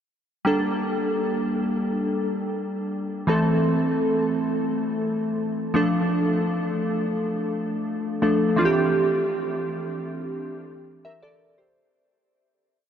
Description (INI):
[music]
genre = pop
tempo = free time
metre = none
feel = none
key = G dorian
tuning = A4 = 439 Hz
[part]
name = glassy digital keys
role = solo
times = 0.4-11.9 s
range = E3 to E5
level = -22 LUFS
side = equal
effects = chorus, analog delay
[sound]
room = wet huge ambient reverb, RT60 9.2 s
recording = dreamy mix soaked in reverb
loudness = -22 LUFS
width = side -8 dB against mid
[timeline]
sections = 0.5-11.8 verse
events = fade-out 8.9-11.8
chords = 0.5 Gmadd9; 3.3 Am; 5.8 Dm; 8.6 Cadd9/E